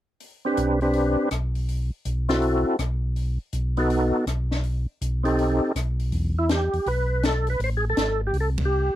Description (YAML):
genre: soul jazz organ trio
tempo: 162 BPM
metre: 4/4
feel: swing 64% on 8ths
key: E minor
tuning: A4 = 442 Hz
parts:
  - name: compact cocktail drum kit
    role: drums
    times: 0.2-8.6 s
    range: hi-hat, kick drum, ride cymbal, rim click, snare drum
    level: -30 LUFS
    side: left 2 dB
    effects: none
  - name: overdriven tonewheel organ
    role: melody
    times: 0.5-9.0 s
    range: B3 to C5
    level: -23 LUFS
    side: equal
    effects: slow rotary speaker, chorus vibrato
  - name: mellow tonewheel organ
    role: bass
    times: 0.6-8.9 s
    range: G#1 to E2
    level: -24 LUFS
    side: equal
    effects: chorus vibrato, slow rotary speaker
room: light reverb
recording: none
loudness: -22 LUFS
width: side -13 dB against mid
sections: 0.2-6.1 A section; 6.1-9.0 B section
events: band accent 8.5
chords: 0.2 Gadd11/B; 6.1 Em; 7.6 Am7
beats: | 0.20 0.57 0.94 1.31 | 1.68 2.05 2.42 2.79 | 3.16 3.53 3.90 4.27 | 4.64 5.01 5.38 5.75 | 6.12 6.49 6.86 7.23 | 7.60 7.97 8.34 8.71